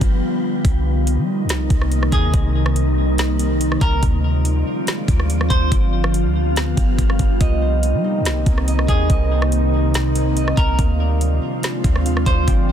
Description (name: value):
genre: hip hop, atmospheric cloud-rap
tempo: 142 BPM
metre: 4/4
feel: half-time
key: C minor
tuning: A4 = 440 Hz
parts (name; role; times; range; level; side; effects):
- glassy FM pad; sustained chords; 0.0-12.7 s; C3 to F4; -22 LUFS; equal; ensemble chorus, built-in reverb
- clean 808-style bass; bass; 0.0-12.7 s; G1 to G3; -19 LUFS; equal; none
- smooth R&B drum kit; drums; 0.0-12.6 s; hi-hat, kick drum, rim click, snare drum; -20 LUFS; equal; soft clipping on snare
- wind-like tuned noise texture; texture; 0.0-12.7 s; B3 to G5; -33 LUFS; equal; built-in reverb
- clean electric guitar; melody; 2.1-5.7, 8.9-12.5 s; Ab4 to C5; -27 LUFS; right 1 dB; spring reverb, ping-pong delay
- concert harp; arpeggios; 7.4-12.7 s; Bb3 to G5; -26 LUFS; right 5 dB; ping-pong delay
room: little or no reverb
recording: dense, heavily limited modern master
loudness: -16 LUFS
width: side -9 dB against mid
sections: 0.6-12.7 A section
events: break 0.2-0.6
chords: 0.0 G7; 0.6 Cm7; 4.0 Dm7b5; 5.7 G7; 7.4 Cm7; 10.8 Dm7b5